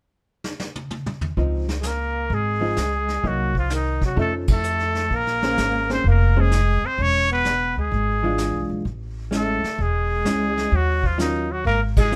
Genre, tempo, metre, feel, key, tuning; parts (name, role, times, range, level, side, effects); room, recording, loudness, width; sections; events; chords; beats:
jazz, small-group swing and bop; 128 BPM; 4/4; swing 67% on 8ths; Db major; A4 = 439 Hz
vintage brush drum kit; drums; 0.4-12.2 s; brushed snare drum, hi-hat, kick drum, ride cymbal, snare drum, toms; -28 LUFS; equal
vintage hollow-body jazz guitar; accompaniment; 1.4-12.2 s; Eb3 to C5; -28 LUFS; equal
upright bass; bass; 1.4-12.2 s; E1 to C3; -26 LUFS; equal
trumpet with straight mute; melody; 1.8-12.2 s; Eb4 to Db5; -26 LUFS; equal
breathy tenor saxophone; second line; 1.8-12.2 s; Eb3 to Db4; -31 LUFS; equal
light reverb; -22 LUFS; mono
0.0-1.4 A section; 1.4-12.2 B section
drum fill 0.4-1.4; band accent 4.4, 11.9
0.0 N.C.; 1.4 Dbmaj9; 3.2 Cm7b5; 4.2 Faug7; 5.1 Bbm9; 7.0 E7b9; 8.9 Amaj7; 10.7 Ebm9
0.44 0.91 | 1.38 1.84 2.31 2.78 | 3.24 3.71 4.18 4.65 | 5.11 5.58 6.05 6.52 | 6.99 7.45 7.92 8.39 | 8.86 9.33 9.79 10.26 | 10.73 11.20 11.66 12.13